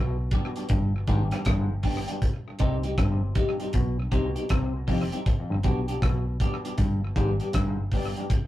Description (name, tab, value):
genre	roots reggae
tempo	79 BPM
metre	4/4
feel	swing 63% on 16ths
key	unclear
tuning	A4 = 439 Hz
part	overdriven clav	riff	0.0-7.8 s	F2 to C3	-32 LUFS	left 1 dB	tape echo
part	vintage muted fingered electric bass	bass	0.0-8.1 s	F1 to C2	-29 LUFS	equal	none
part	electric guitar at the edge of break-up	accompaniment	0.3-8.2 s	G3 to G4	-31 LUFS	left 1 dB	phaser
part	cloth-damped thuddy drum kit	drums	0.3-8.5 s	hi-hat, kick drum, rim click	-27 LUFS	equal	none
room	moderate booth ambience, RT60 0.3 s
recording	rough rehearsal-room recording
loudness	-24 LUFS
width	side -15 dB against mid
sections	0.0-8.5 A section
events	none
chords	0.0 G; 2.2 Cm; 5.3 G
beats	0.70 1.46 | 2.22 2.98 3.74 4.50 | 5.26 6.02 6.78 7.54 | 8.30